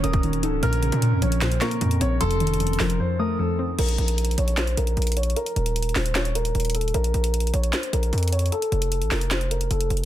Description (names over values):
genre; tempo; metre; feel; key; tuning
hip hop, trap; 152 BPM; 4/4; half-time; Bb harmonic minor; A4 = 439 Hz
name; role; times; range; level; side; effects
warm concert grand piano; melody; 0.0-9.9 s; A4 to Db5; -28 LUFS; equal; low-pass filter, ping-pong delay
soft synth bell; second line; 0.0-3.8 s; C6 to F6; -34 LUFS; right 2 dB; chorus, ping-pong delay
soft round pluck; accompaniment; 0.0-3.8 s; F2 to Eb4; -25 LUFS; left 1 dB; chorus
deep dark ambient pad; sustained chords; 0.0-3.8 s; Eb3 to Bb4; -32 LUFS; right 2 dB; chorus, built-in reverb
distorted 808-style bass; bass; 0.0-10.1 s; Db1 to Bb2; -23 LUFS; equal; distortion
trap drum kit; drums; 0.0-10.0 s; crash cymbal, handclaps, hi-hat, kick drum, snare drum; -28 LUFS; equal; overdrive
room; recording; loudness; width
little or no reverb; dense, heavily limited modern master; -21 LUFS; side -12 dB against mid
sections
0.0-3.8 A section; 3.8-10.1 B section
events
break 3.0-3.8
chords
0.0 Ebm7; 0.6 Bbmadd9; 2.2 F7; 3.8 Bbm; 5.4 Eb5; 6.9 Bb5; 8.5 F